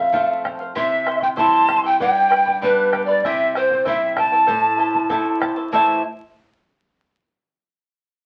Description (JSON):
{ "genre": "andean folk, Andean ensemble", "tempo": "96 BPM", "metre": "2/4", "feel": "straight", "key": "A minor", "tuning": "A4 = 440 Hz", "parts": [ { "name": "mellow polished pan flute", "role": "melody", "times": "0.0-6.0 s", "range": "B4 to A5", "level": "-20 LUFS", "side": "equal", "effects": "none" }, { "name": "large quena", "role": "second line", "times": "0.0-6.0 s", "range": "B4 to C6", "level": "-24 LUFS", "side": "equal", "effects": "none" }, { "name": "charango", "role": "accompaniment", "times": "0.0-6.0 s", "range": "E4 to C6", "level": "-30 LUFS", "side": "equal", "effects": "none" }, { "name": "flamenco guitar", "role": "accompaniment", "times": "0.0-6.0 s", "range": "F2 to E5", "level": "-29 LUFS", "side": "equal", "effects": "none" }, { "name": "bombo", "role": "percussion", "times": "0.1-6.0 s", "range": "none", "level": "-31 LUFS", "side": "equal", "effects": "none" } ], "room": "wet studio reverb, RT60 0.6 s", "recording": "very old 78 rpm record, vinyl crackle", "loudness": "-18 LUFS", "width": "mono", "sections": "0.0-5.7 A section; 5.7-7.0 B section", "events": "none", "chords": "0.0 F; 0.8 C; 2.0 G; 3.2 C; 4.5 Am" }